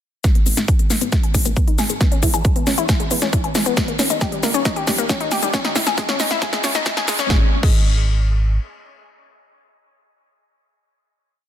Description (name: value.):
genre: uplifting trance.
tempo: 136 BPM.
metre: 4/4.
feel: straight.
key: G# harmonic minor.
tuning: A4 = 440 Hz.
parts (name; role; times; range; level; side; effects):
analog pluck; arpeggios; 0.2-7.8 s; G3 to G#4; -23 LUFS; left 3 dB; chorus, sidechain pumping, dub echo.
big-room dance drum kit; drums; 0.2-7.8 s; crash cymbal, hi-hat, shaker, snare drum; -21 LUFS; left 1 dB; overdrive, sidechain pumping on hats, sidechain pumping on perc, sidechain pumping on cymbals.
electronic kick drum; drums; 0.2-7.8 s; none; -18 LUFS; equal; overdrive.
solid FM bass; bass; 0.5-8.6 s; D#1 to E2; -23 LUFS; equal; sidechain pumping, high-pass filter.
room: light reverb, digital ambience.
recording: dense, heavily limited modern master, high-pass filter.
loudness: -16 LUFS.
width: side -10 dB against mid.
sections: 0.2-7.3 build; 7.3-10.8 final chord.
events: build-up 0.2-7.3; drum fill 0.2-7.3; filter sweep on synth arpeggio sound 0.2-7.3; filter sweep 0.2-7.3.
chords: 0.2 G#madd9; 2.0 E6; 3.8 D#7; 5.5 C#madd9; 7.3 N.C..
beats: | 0.24 0.68 1.12 1.56 | 2.01 2.45 2.89 3.33 | 3.77 4.21 4.65 5.09 | 5.54 5.98 6.42 6.86 | 7.30 7.74 8.18.